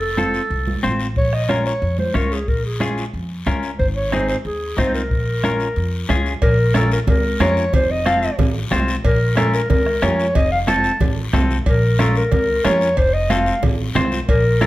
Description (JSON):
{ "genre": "latin, cumbia", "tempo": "183 BPM", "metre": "4/4", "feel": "straight", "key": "Bb minor, Bb harmonic minor from 6.4 s", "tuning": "A4 = 440 Hz", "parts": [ { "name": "mellow clarinet", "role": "melody", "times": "0.0-14.7 s", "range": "Ab4 to A5", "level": "-20 LUFS", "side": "equal", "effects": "none" }, { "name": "upright bass", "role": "bass", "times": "0.0-14.7 s", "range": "F1 to F2", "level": "-21 LUFS", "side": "equal", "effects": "none" }, { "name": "semi-hollow electric guitar", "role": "accompaniment", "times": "0.2-14.7 s", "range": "C4 to Db5", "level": "-22 LUFS", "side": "left 2 dB", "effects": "none" }, { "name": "congas", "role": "percussion", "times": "0.2-14.7 s", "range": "none", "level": "-25 LUFS", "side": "right 4 dB", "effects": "none" }, { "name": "guiro", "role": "percussion", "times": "0.2-14.7 s", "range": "none", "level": "-35 LUFS", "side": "left 6 dB", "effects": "none" }, { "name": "bombo", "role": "percussion", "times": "1.2-14.7 s", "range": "none", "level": "-21 LUFS", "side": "equal", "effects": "none" }, { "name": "cowbell and timbales", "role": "percussion", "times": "6.4-14.7 s", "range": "none", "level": "-30 LUFS", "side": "right 3 dB", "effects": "none" } ], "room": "light reverb", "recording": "none", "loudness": "-16 LUFS", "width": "side -16 dB against mid", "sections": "0.0-6.4 A section; 6.4-14.7 B section", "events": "none", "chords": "0.0 F; 1.2 Bbm; 3.8 Ab; 5.1 Bbm; 7.7 F; 9.0 Bbm; 10.4 F; 11.7 Bbm; 13.0 F" }